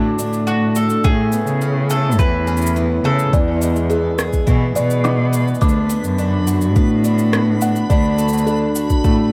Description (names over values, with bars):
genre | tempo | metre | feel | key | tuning
folktronica | 105 BPM | 4/4 | straight | unclear | A4 = 441 Hz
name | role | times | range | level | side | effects
mandolin | melody | 0.0-3.3 s | D4 to B4 | -26 LUFS | equal | tape echo
picked twelve-string acoustic guitar | arpeggios | 0.0-9.3 s | E2 to G#4 | -24 LUFS | equal | low-pass filter, tape echo
rich cello | bass | 0.0-9.3 s | D2 to C#3 | -20 LUFS | equal | none
electronic cabasa and rim click | drums | 0.2-9.2 s | none | -29 LUFS | equal | overdrive
electronic kick drum | drums | 1.0-9.2 s | none | -19 LUFS | equal | overdrive
music box | second line | 3.3-8.6 s | G#4 to D6 | -27 LUFS | equal | tape echo
backwards swelling texture | texture | 5.1-9.3 s | B5 | -33 LUFS | equal | built-in reverb
room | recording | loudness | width
studio ambience | none | -17 LUFS | mono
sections
0.0-9.3 A section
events
none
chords
0.0 D; 1.0 Aadd9; 3.3 E; 5.6 Bm/D